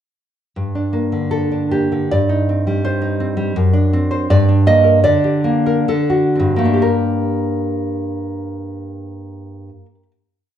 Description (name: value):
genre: romantic piece for solo classical guitar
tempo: 60-85 BPM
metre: 2/4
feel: rubato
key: G minor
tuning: A4 = 442 Hz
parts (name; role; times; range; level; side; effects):
- nylon-string guitar; solo; 0.6-10.1 s; F#2 to Eb5; -15 LUFS; equal; none
room: wet large studio reverb, RT60 0.9 s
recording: band playing live in one room, nothing above 10.6 kHz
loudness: -14 LUFS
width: side -10 dB against mid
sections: 0.6-6.8 A section; 6.8-10.4 final chord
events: slowing down 2.9-6.8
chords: 0.6 Gm; 2.1 Cm/G; 3.6 D7/F#; 4.3 Gm; 5.0 Gm/D; 5.9 D7; 6.8 Gm